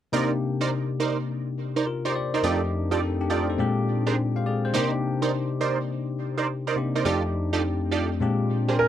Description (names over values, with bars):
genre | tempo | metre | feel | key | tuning
R&B | 104 BPM | 4/4 | swing 66% on 16ths | C minor | A4 = 440 Hz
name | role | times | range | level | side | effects
bell-like tine electric piano | accompaniment | 0.1-8.9 s | F2 to Ab5 | -25 LUFS | left 2 dB | phaser
funky polysynth comp | stabs | 0.1-8.8 s | D4 to D5 | -27 LUFS | right 6 dB | chorus, tape echo
clear baby grand piano | melody | 8.8-8.9 s | Bb4 | -18 LUFS | right 2 dB | none
room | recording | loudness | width
moderate booth ambience, RT60 0.2 s | dry, close 1970s-style studio recording | -23 LUFS | side -10 dB against mid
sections
0.1-8.9 A section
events
tine electric piano fill 8.5-8.9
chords
0.1 Cm9; 2.4 F13; 3.6 Bb13; 4.7 Cm9; 7.1 F13; 8.2 Bb13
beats
| 0.13 0.71 1.29 1.86 | 2.44 3.02 3.59 4.17 | 4.75 5.33 5.90 6.48 | 7.06 7.63 8.21 8.79